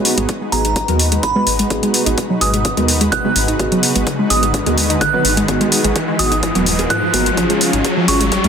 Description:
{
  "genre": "progressive house",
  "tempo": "127 BPM",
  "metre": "4/4",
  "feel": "straight",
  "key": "G# dorian",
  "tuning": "A4 = 441 Hz",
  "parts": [
    { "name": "lush unison pad", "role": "sustained chords", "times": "0.0-8.5 s", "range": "G#3 to B4", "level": "-24 LUFS", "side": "equal", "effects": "chorus, sidechain pumping" },
    { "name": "chorused polysynth", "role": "stabs", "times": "0.0-8.5 s", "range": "B3 to B4", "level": "-21 LUFS", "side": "right 2 dB", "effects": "cassette tape, sidechain pumping, ping-pong delay" },
    { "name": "riser", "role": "sound effects", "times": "1.7-8.5 s", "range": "none", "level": "-22 LUFS", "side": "left 1 dB", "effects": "none" },
    { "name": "electronic hi-hat", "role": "drums", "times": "0.1-8.5 s", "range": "none", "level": "-19 LUFS", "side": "left 1 dB", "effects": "overdrive, sidechain pumping on hats" },
    { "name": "wide unison pluck", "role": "arpeggios", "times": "0.2-8.5 s", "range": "G#2 to G#4", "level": "-21 LUFS", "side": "equal", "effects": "sidechain pumping, ping-pong delay" },
    { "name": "dark detuned saw bass", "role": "bass", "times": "0.2-8.5 s", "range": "D#1 to G#2", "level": "-21 LUFS", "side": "left 1 dB", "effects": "sidechain pumping" },
    { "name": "electronic kick drum", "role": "drums", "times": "0.3-8.4 s", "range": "none", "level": "-25 LUFS", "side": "equal", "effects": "overdrive, high-pass filter on kick, high-pass filter on room" },
    { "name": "glassy synth bell", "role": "melody", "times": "0.5-8.5 s", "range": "A#5 to F#6", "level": "-21 LUFS", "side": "right 2 dB", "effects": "chorus, ping-pong delay" }
  ],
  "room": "moderate lush hall reverb, RT60 2.0 s",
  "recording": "dense, heavily limited modern master",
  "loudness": "-13 LUFS",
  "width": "side -7 dB against mid",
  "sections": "0.0-8.5 A section",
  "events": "build-up 0.0-8.5; filter sweep on synth pluck 0.0-8.5; filter sweep on analog polysynth 0.0-8.5; riser 1.7-8.5; drum fill 7.4-8.5",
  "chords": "0.0 G#m7; 7.4 C#/G#"
}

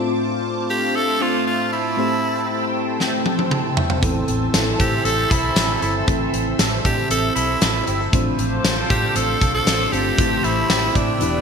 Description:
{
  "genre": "1980s-style pop",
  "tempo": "117 BPM",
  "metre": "4/4",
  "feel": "straight",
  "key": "A minor",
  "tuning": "A4 = 440 Hz",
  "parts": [
    { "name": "FM electric piano with soft pad layer", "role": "accompaniment", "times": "0.0-11.4 s", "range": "A2 to A5", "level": "-25 LUFS", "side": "left 2 dB", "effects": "chorus" },
    { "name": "phased analog pad", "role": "sustained chords", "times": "0.0-11.4 s", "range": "A3 to E6", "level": "-27 LUFS", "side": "right 2 dB", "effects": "phaser, chorus" },
    { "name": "raspy tenor saxophone", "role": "melody", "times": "0.7-11.4 s", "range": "D4 to A4", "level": "-22 LUFS", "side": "right 1 dB", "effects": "digital delay" },
    { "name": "big rock drum kit", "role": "drums", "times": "3.0-11.3 s", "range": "hi-hat, kick drum, snare drum, tambourine, toms", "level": "-21 LUFS", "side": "equal", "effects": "gated reverb" },
    { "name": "direct-recorded clean electric guitar", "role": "riff", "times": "4.0-11.4 s", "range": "E3 to A4", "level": "-28 LUFS", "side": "right 8 dB", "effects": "ensemble chorus, digital delay" },
    { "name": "warm horn section", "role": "stabs", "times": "4.0-11.4 s", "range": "E3 to C5", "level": "-30 LUFS", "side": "left 2 dB", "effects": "none" },
    { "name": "vintage muted fingered electric bass", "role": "bass", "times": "4.0-11.4 s", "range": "E1 to A2", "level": "-25 LUFS", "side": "equal", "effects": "none" }
  ],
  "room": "moderate lush hall reverb, RT60 2.7 s",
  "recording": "bright 1980s-style digital production",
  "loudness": "-17 LUFS",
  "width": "side -6 dB against mid",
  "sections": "0.0-11.4 A section",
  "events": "drum fill 3.0-4.0; FM electric piano fill 3.0-4.0",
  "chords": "0.0 Dm7/A; 2.0 C6/A; 4.0 Am; 8.1 Dm7/A; 10.2 C6/A"
}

